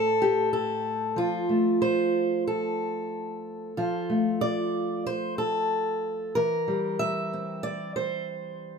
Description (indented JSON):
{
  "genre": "folk, solo fingerstyle acoustic guitar",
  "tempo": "93 BPM",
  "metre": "4/4",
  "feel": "rubato",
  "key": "unclear",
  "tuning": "A4 = 440 Hz",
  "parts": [
    { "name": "fingerpicked steel-string acoustic guitar", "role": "solo", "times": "0.0-8.8 s", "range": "A2 to E5", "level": "-25 LUFS", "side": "equal", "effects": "none" }
  ],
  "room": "moderate studio reverb, RT60 0.6 s",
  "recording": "none",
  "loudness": "-25 LUFS",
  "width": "side -5 dB against mid",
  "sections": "0.0-8.8 A section",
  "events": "none",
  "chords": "0.0 N.C.; 1.2 F; 6.4 C7/E"
}